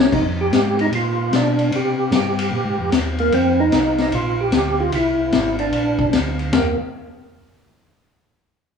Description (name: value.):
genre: soul jazz organ trio.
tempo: 150 BPM.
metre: 4/4.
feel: swing 65% on 8ths.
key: unclear.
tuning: A4 = 441 Hz.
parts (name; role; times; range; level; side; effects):
percussive tonewheel organ; melody; 0.0-6.8 s; Bb3 to G4; -19 LUFS; right 1 dB; slow rotary speaker, chorus vibrato.
mellow tonewheel organ; bass; 0.0-6.8 s; Ab1 to C3; -23 LUFS; equal; slow rotary speaker.
vintage drum kit; drums; 0.1-6.6 s; crash cymbal, hi-hat, kick drum, ride cymbal, snare drum, toms; -21 LUFS; left 4 dB; none.
room: moderate large studio reverb, RT60 1.3 s.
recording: band playing live in one room.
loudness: -16 LUFS.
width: side -6 dB against mid.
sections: 0.1-6.5 A section; 6.5-8.1 B section.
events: none.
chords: 0.1 Fmadd9; 0.9 Bb; 1.7 C5; 2.5 Bb5; 3.3 F5; 4.1 Bb; 4.9 C; 5.7 Bb; 6.5 Eb5.